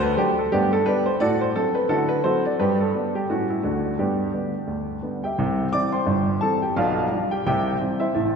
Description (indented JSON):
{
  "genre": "jazz, stride piano",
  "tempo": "173 BPM",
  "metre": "4/4",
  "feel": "swing 60% on 8ths",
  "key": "G major",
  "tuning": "A4 = 440 Hz",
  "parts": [
    { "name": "clear baby grand piano", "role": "solo", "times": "0.0-8.4 s", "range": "G1 to D6", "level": "-20 LUFS", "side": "equal", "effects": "none" }
  ],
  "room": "wet church reverb, RT60 3.0 s",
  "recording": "recorded in a church or concert hall",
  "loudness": "-20 LUFS",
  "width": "side -6 dB against mid",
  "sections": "0.0-5.4 A section; 5.4-8.4 B section",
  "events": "none",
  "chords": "0.0 D; 0.5 G; 1.2 D7/A; 1.9 D9; 2.6 G; 3.3 A7; 3.6 D; 4.0 G; 5.4 C; 6.8 G7/B; 7.5 C"
}